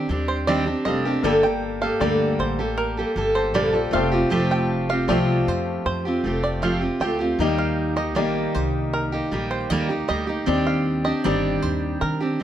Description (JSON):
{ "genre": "acoustic pop", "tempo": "78 BPM", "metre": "4/4", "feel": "straight", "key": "unclear", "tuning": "A4 = 440 Hz", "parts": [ { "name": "felt-muted upright piano", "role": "accompaniment", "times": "0.0-12.4 s", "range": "A3 to A5", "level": "-28 LUFS", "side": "left 8 dB", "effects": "none" }, { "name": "picked steel-string acoustic guitar", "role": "accompaniment", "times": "0.0-12.4 s", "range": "G2 to A4", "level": "-22 LUFS", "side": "right 2 dB", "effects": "none" }, { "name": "upright bass", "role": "bass", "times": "0.1-12.3 s", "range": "F1 to Eb3", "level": "-28 LUFS", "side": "left 1 dB", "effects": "none" }, { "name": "bluegrass banjo", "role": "arpeggios", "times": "0.3-12.2 s", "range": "Bb4 to G5", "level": "-27 LUFS", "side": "right 3 dB", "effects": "none" } ], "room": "light reverb", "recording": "none", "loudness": "-20 LUFS", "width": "side -11 dB against mid", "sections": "0.0-12.4 A section", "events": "none", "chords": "0.0 Cmadd9; 1.2 Gmadd9; 3.9 Fadd9; 7.4 Eb; 10.5 Cmadd9", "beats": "0.48 | 1.25 2.02 2.79 3.56 | 4.32 5.09 5.86 6.63 | 7.40 8.17 8.94 9.71 | 10.48 11.25 12.02" }